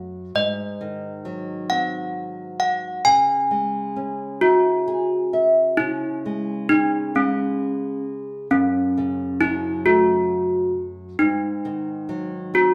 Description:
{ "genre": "children's music, lullaby", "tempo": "44 BPM (dotted quarters)", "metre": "6/8", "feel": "rubato", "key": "C# harmonic minor", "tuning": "A4 = 435 Hz", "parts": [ { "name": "nylon-string guitar", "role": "accompaniment", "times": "0.0-12.7 s", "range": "F#2 to E5", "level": "-29 LUFS", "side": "equal", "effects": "none" }, { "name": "desk bells", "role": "melody", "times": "0.4-12.7 s", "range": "C#4 to G#5", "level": "-22 LUFS", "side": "equal", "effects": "none" } ], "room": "wet large studio reverb, RT60 1.3 s", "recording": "band playing live in one room", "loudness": "-22 LUFS", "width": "mono", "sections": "0.0-5.8 A section; 5.8-12.7 A section", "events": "nylon-string guitar fill 4.4-5.8", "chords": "0.3 G#7; 3.0 C#m; 8.5 F#m; 11.2 G#7", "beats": "| 0.35 1.70 | 3.05 4.42 | 5.79 7.15 | 8.51 9.85 | 11.19 12.53" }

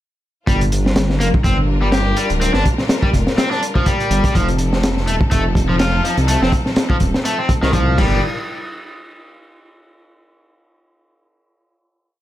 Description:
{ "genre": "breakbeat, breaks", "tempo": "124 BPM", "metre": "4/4", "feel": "swing 56% on 16ths", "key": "G minor", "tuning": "A4 = 440 Hz", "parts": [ { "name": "clear studio string section", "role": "sustained chords", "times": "0.5-8.2 s", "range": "F3 to Bb4", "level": "-26 LUFS", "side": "left 2 dB", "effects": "sidechain pumping" }, { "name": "crunchy overdriven guitar", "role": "riff", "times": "0.5-8.2 s", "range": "Eb3 to G4", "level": "-21 LUFS", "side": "left 1 dB", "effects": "ping-pong delay" }, { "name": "dark detuned saw bass", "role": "bass", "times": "0.5-8.2 s", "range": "D1 to C2", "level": "-18 LUFS", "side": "equal", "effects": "none" }, { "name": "crunchy breakbeat drum kit", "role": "drums", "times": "0.5-8.1 s", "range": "crash cymbal, hi-hat, kick drum, snare drum", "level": "-18 LUFS", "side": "equal", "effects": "none" } ], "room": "light reverb", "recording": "none", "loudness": "-14 LUFS", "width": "side -14 dB against mid", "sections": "0.5-8.2 drop; 8.2-10.2 final hit", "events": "drop 0.5-8.2", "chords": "0.5 Gm7; 4.3 F7; 8.0 Gm7; 8.2 N.C.", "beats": "| 0.47 0.96 1.44 1.93 | 2.41 2.89 3.38 3.86 | 4.35 4.83 5.31 5.80 | 6.28 6.76 7.25 7.73" }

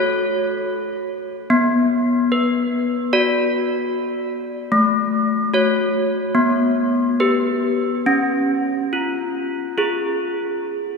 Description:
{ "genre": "classical, tune for handbells", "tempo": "69-75 BPM", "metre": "4/4", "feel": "straight", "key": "F# minor", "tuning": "A4 = 438 Hz", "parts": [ { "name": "desk bells", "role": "solo", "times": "0.0-11.0 s", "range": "A3 to D5", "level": "-17 LUFS", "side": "left 1 dB", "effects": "none" } ], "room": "wet cathedral reverb, RT60 5.4 s", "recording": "recorded in a church or concert hall, studio reverb", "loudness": "-17 LUFS", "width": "side -4 dB against mid", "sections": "0.0-11.0 A section", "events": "none", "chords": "0.0 F#m/A; 1.5 Bm; 4.7 F#m/A; 6.4 G/B; 8.1 C#", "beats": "0.71 | 1.52 2.33 3.14 3.94 | 4.74 5.55 6.36 7.19 | 8.06 8.92 9.78 10.62" }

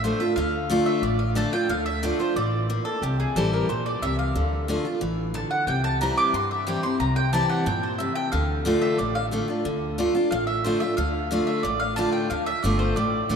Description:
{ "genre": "bluegrass", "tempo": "181 BPM", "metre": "4/4", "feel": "straight", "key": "D minor", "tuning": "A4 = 441 Hz", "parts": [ { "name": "mandolin", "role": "melody", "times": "0.0-13.4 s", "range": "G4 to D6", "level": "-27 LUFS", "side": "right 1 dB", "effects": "none" }, { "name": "picked steel-string acoustic guitar", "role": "accompaniment", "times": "0.0-13.4 s", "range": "G2 to F4", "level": "-25 LUFS", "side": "equal", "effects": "none" }, { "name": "upright bass", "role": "bass", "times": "0.0-13.4 s", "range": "G1 to G2", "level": "-28 LUFS", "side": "equal", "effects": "none" } ], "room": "wet cathedral reverb, RT60 5.0 s", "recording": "in a vast, echoing space", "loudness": "-22 LUFS", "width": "side -6 dB against mid", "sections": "0.0-9.7 A section; 9.7-13.4 A section", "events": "none", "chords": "0.0 Dm; 3.0 C; 4.4 Dm; 5.7 C; 8.3 Dm", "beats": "0.03 | 0.37 0.70 1.03 1.36 | 1.70 2.03 2.36 2.69 | 3.02 3.36 3.69 4.02 | 4.35 4.68 5.01 5.34 | 5.68 6.01 6.34 6.67 | 7.00 7.33 7.66 8.00 | 8.33 8.66 8.99 9.32 | 9.65 9.98 10.31 10.64 | 10.98 11.31 11.64 11.97 | 12.30 12.63 12.97 13.30" }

